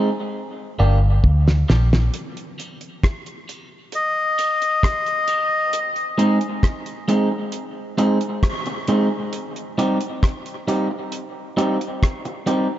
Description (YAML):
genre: dub reggae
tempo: 67 BPM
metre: 4/4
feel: straight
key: C minor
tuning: A4 = 440 Hz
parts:
  - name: electric guitar at the edge of break-up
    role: accompaniment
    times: 0.0-12.7 s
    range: G3 to Ab4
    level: -22 LUFS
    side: right 1 dB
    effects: spring reverb, high-pass filter, dub echo
  - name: vintage muted fingered electric bass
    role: bass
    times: 0.8-2.1 s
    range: G1 to D2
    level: -15 LUFS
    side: equal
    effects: none
  - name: damped 70s drum kit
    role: drums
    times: 1.2-12.7 s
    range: hi-hat, kick drum, rim click, snare drum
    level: -22 LUFS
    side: equal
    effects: none
  - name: melodica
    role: melody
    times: 4.0-5.8 s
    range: Eb5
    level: -20 LUFS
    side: left 2 dB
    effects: dub echo
room: light reverb, small room ambience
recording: echo-heavy mix, nothing above 7.7 kHz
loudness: -18 LUFS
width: side -12 dB against mid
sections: 0.0-2.1 A section; 2.1-12.8 B section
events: break 0.0-2.1, 2.1-12.8; filter sweep on clean electric guitar 0.0-5.7; drum fill 0.3-2.1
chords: 0.3 Gm; 2.1 Cm; 5.7 Ab; 9.3 Cm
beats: 0.34 1.24 | 2.13 3.03 3.93 4.83 | 5.73 6.63 7.53 8.43 | 9.33 10.23 11.13 12.03